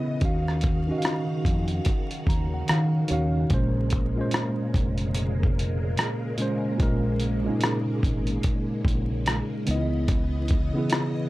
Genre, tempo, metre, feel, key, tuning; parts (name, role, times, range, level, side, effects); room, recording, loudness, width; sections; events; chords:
lo-fi hip hop; 73 BPM; 4/4; swing 62% on 16ths; A4 = 443 Hz
tine electric piano; accompaniment; 0.0-11.3 s; Bb2 to Bb5; -28 LUFS; right 1 dB; medium stereo tremolo, cassette tape
string machine, full ensemble; sustained chords; 0.0-11.3 s; Bb2 to F5; -33 LUFS; equal; phaser, ensemble chorus
deep dub fingered electric bass; bass; 0.2-10.7 s; F1 to Eb3; -27 LUFS; equal; tube saturation
dusty soul sampler-style drum kit; drums; 0.2-11.2 s; hi-hat, kick drum, rim click; -25 LUFS; equal
light reverb; dry, gritty hardware recording, vinyl crackle; -23 LUFS; side -18 dB against mid
0.0-11.3 A section
tine electric piano fill 1.9-3.5
0.2 Ebm9; 3.5 Bbm9; 9.7 Dbm9